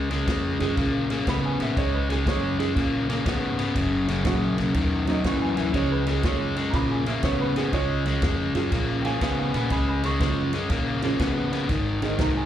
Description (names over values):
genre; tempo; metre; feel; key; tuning
electric blues shuffle; 121 BPM; 4/4; swing 66% on 8ths; Db mixolydian; A4 = 439 Hz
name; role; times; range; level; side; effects
warm upright piano; accompaniment; 0.0-12.5 s; Eb3 to Db6; -30 LUFS; right 6 dB; none
cranked stack guitar; riff; 0.0-12.5 s; Gb2 to Cb4; -25 LUFS; left 3 dB; overdrive, slapback echo
upright bass; bass; 0.0-12.5 s; Gb1 to Db3; -29 LUFS; right 1 dB; none
swinging big-band drum kit; drums; 0.1-12.3 s; kick drum, ride cymbal, snare drum; -29 LUFS; equal; none
room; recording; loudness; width
small room ambience; live gig heard through the venue's PA, club reverb; -22 LUFS; side -11 dB against mid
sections
0.0-12.5 A section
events
none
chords
0.0 Db; 3.8 Gb; 5.7 Db; 11.7 Ab